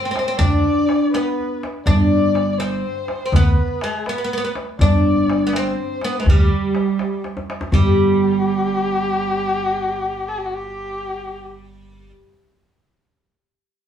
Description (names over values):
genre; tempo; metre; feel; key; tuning
Persian modal ensemble; 82 BPM (dotted quarters); 6/8; straight; G dastgah chahargah; A4 = 440 Hz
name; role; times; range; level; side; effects
oud; melody; 0.0-12.1 s; G3 to D4; -20 LUFS; right 1 dB; none
dark kamancheh; second line; 0.0-11.4 s; F#4 to D5; -24 LUFS; left 3 dB; none
tombak; percussion; 0.2-7.9 s; none; -19 LUFS; left 1 dB; none
upright bass; bass; 0.4-12.1 s; G1 to D2; -21 LUFS; right 1 dB; none
room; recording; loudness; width
wet studio reverb, RT60 0.7 s; band playing live in one room, small room ambience; -16 LUFS; side -9 dB against mid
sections
0.0-7.7 A section; 7.7-10.6 B section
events
drum fill 7.2-7.7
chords
none